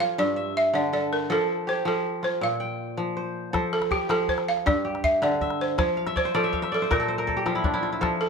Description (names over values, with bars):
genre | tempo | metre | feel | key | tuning
west african traditional, West African string and xylophone music | 107 BPM (dotted quarters) | 12/8 | straight | F major | A4 = 440 Hz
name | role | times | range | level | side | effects
balafon | melody | 0.0-8.3 s | G4 to F5 | -25 LUFS | right 2 dB | none
kora | arpeggios | 0.0-8.3 s | G2 to G5 | -26 LUFS | left 1 dB | none
calabash | percussion | 3.5-8.1 s | none | -30 LUFS | left 3 dB | none
room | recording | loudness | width
moderate recital hall reverb, RT60 1.6 s | close, detailed microphones | -23 LUFS | side -5 dB against mid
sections
0.0-3.5 A section; 3.5-8.3 A section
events
kora fill 6.0-8.0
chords
0.2 G5; 1.3 F; 2.4 Bb5; 3.5 F; 4.7 G5; 5.8 F; 6.9 Bb5